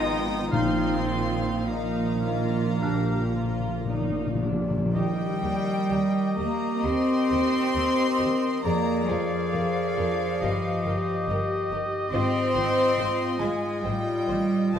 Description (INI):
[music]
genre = classical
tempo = 52-73 BPM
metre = 4/4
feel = rubato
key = Eb major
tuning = A4 = 437 Hz
[part]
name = warm studio violin section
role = melody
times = 0.0-14.8 s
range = Bb4 to Eb6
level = -41 LUFS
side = left 3 dB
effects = none
[part]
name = mellow silver concert flute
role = second line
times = 0.0-14.8 s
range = Bb4 to C6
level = -36 LUFS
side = left 3 dB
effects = none
[part]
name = warm symphonic violin section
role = second line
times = 0.0-14.8 s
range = F5 to C6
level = -36 LUFS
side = left 2 dB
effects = none
[part]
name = dark symphonic viola section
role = accompaniment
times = 0.0-14.8 s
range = Cb4 to C5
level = -36 LUFS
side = right 3 dB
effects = none
[part]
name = dark trombone section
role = sustained chords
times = 0.0-4.6 s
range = D3 to F3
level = -38 LUFS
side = right 3 dB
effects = none
[part]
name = mellow French horn section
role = sustained chords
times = 0.0-14.8 s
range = Bb3 to Eb5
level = -34 LUFS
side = left 3 dB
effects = none
[part]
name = concert harp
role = arpeggios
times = 0.0-14.8 s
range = F2 to F5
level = -34 LUFS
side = left 7 dB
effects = none
[part]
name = mellow trumpet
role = stabs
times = 0.0-4.4 s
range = Bb3 to Eb4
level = -34 LUFS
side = right 2 dB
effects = none
[part]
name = dark symphonic double bass section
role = bass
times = 0.0-14.8 s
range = G1 to F2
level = -33 LUFS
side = right 3 dB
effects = none
[part]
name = rich symphonic cello section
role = bass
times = 0.0-14.8 s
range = Ab2 to C4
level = -27 LUFS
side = right 1 dB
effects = none
[part]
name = bright oboe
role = second line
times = 0.5-14.8 s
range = D5 to F5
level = -34 LUFS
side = equal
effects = none
[part]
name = warm clarinet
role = second line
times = 0.5-14.8 s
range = D4 to Ab4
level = -32 LUFS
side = equal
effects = none
[part]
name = timpani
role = percussion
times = 0.5-6.3 s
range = Bb2 to Eb3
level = -30 LUFS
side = left 1 dB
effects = none
[sound]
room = wet recital hall reverb, RT60 1.4 s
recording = none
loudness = -23 LUFS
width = side -8 dB against mid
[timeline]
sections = 0.0-4.9 A section; 4.9-14.8 B section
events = timpani fill 2.8-4.9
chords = 0.0 Fm7b5/Ab; 0.5 Bbsus4; 2.8 Bb; 4.9 Eb; 8.6 Bb7/F; 10.4 Eb/G; 12.1 Fm7/Ab; 13.8 F7/A